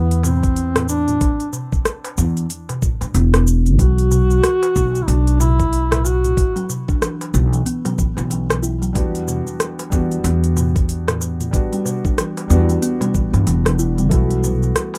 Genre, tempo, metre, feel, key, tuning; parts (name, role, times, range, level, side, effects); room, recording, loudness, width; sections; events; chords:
organic downtempo; 93 BPM; 4/4; swing 60% on 16ths; E minor; A4 = 441 Hz
mellow duduk; melody; 0.0-6.7 s; B3 to F#4; -23 LUFS; equal; tape echo
upright bass; bass; 0.0-14.7 s; E1 to G2; -19 LUFS; equal; sidechain pumping
organic electronic drum kit; drums; 0.1-15.0 s; hi-hat, rim click, shaker, toms; -26 LUFS; equal
darbuka; percussion; 0.2-15.0 s; -32 LUFS; equal
electronic kick drum; drums; 0.4-14.3 s; -21 LUFS; equal
kalimba; arpeggios; 3.8-14.7 s; E3 to E4; -27 LUFS; equal; tape echo
felt-muted upright piano; accompaniment; 8.9-15.0 s; G3 to F#4; -28 LUFS; equal; sidechain pumping, tape echo
light reverb; rough home demo mix; -18 LUFS; mono
0.0-15.0 A section
0.0 N.C.; 3.8 Bsus4; 9.0 Em7; 14.1 B7sus4